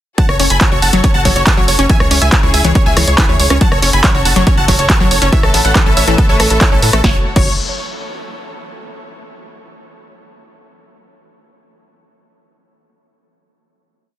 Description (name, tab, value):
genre	uplifting trance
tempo	140 BPM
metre	4/4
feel	straight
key	F# minor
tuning	A4 = 440 Hz
part	big supersaw lead	melody	0.2-7.5 s	A4 to C#6	-19 LUFS	right 2 dB	sidechain pumping, digital delay
part	analog pluck	second line	0.2-7.5 s	A4 to C#6	-24 LUFS	equal	chorus, sidechain pumping, digital delay
part	warm chamber string section	sustained chords	0.2-7.2 s	A3 to E5	-23 LUFS	left 2 dB	sidechain pumping
part	wide unison pluck	arpeggios	0.2-7.6 s	E3 to A4	-21 LUFS	left 2 dB	sidechain pumping, digital delay
part	electronic kick drum	drums	0.2-7.4 s	none	-14 LUFS	equal	overdrive
part	punchy analog drum machine	drums	0.2-7.4 s	crash cymbal, handclaps, hi-hat, rim click, snare drum	-17 LUFS	equal	sidechain pumping on hats, sidechain pumping on cymbals
part	tight sequencer bass	bass	0.3-7.6 s	F#1 to A2	-16 LUFS	equal	sidechain pumping
room	little or no reverb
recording	dense, heavily limited modern master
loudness	-9 LUFS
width	side -13 dB against mid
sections	0.2-7.0 drop; 7.0-8.8 final chord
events	drop 0.2-7.0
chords	0.2 F#m; 1.9 C#m; 3.6 F#m; 5.3 Aadd9; 7.0 F#5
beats	| 0.18 0.61 1.04 1.47 | 1.90 2.33 2.75 3.18 | 3.61 4.04 4.47 4.90 | 5.33 5.75 6.18 6.61 | 7.04 7.47